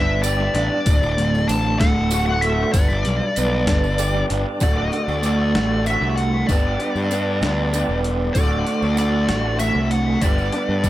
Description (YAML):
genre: psychedelic rock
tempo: 64 BPM (dotted quarters)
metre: 6/8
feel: straight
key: D major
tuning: A4 = 440 Hz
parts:
  - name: smooth overdriven lead guitar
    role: melody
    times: 0.0-10.9 s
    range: D5 to A5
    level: -24 LUFS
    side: left 2 dB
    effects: wah, tape echo
  - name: electric guitar through a small old amp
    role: riff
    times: 0.0-10.9 s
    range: D2 to G4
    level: -22 LUFS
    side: right 2 dB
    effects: rotary speaker
  - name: fuzz picked electric bass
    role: bass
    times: 0.0-10.9 s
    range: D1 to G2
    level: -22 LUFS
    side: equal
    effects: overdrive
  - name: boom bap sampler-style drum kit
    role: drums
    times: 0.2-10.9 s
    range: hi-hat, kick drum, snare drum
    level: -22 LUFS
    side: equal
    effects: tape echo
  - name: tambourine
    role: percussion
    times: 0.2-10.9 s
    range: none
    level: -35 LUFS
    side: right 14 dB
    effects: none
room: little or no reverb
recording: echo-heavy mix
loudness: -17 LUFS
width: side -14 dB against mid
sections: 0.0-4.6 A section; 4.6-10.9 B section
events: none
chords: 0.0 G; 0.9 D; 2.7 G; 4.6 D; 6.5 G; 8.3 D; 10.2 G